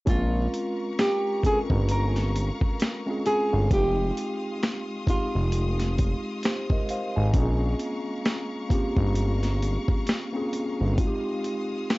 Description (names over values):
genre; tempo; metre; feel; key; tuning
lo-fi hip hop; 66 BPM; 4/4; swing 59% on 16ths; Bb dorian; A4 = 445 Hz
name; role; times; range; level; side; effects
nylon-string guitar; melody; 0.0-6.0 s; F4 to Bb4; -28 LUFS; right 1 dB; none
mellow tine electric piano; accompaniment; 0.0-12.0 s; Ab3 to Ab5; -30 LUFS; equal; medium stereo tremolo, cassette tape
bright studio string section; sustained chords; 0.1-12.0 s; Ab3 to Eb6; -38 LUFS; left 2 dB; none
fat analog bass; bass; 0.1-11.0 s; F1 to Bb1; -24 LUFS; equal; transformer saturation
boom bap sampler-style drum kit; drums; 0.1-12.0 s; hi-hat, kick drum, snare drum; -26 LUFS; equal; none
finger snaps; percussion; 1.0-12.0 s; none; -42 LUFS; right 2 dB; none
room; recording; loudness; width
light reverb; dry, gritty hardware recording, vinyl crackle, tape stop, nothing above 7.7 kHz; -23 LUFS; side -21 dB against mid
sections
0.1-12.0 A section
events
none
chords
0.1 Bbm7; 3.7 Fm7; 7.3 Bbm7; 11.0 Fm7